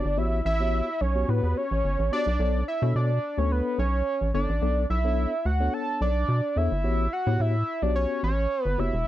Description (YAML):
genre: early-eighties boogie funk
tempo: 108 BPM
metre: 4/4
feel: straight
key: unclear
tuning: A4 = 439 Hz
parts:
  - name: fat analog lead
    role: melody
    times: 0.0-9.1 s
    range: B4 to A5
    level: -27 LUFS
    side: right 1 dB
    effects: chorus, slapback echo
  - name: mellow tine electric piano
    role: accompaniment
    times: 0.0-8.9 s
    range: B3 to D5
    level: -31 LUFS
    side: left 5 dB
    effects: medium stereo tremolo
  - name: rubbery square bass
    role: bass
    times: 0.0-9.0 s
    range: E1 to B2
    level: -25 LUFS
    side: equal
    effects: none
room: little or no reverb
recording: dry, close 1970s-style studio recording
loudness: -23 LUFS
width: side -14 dB against mid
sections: 0.0-9.1 A section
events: none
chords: 0.0 A13; 2.4 Bm9; 6.8 A13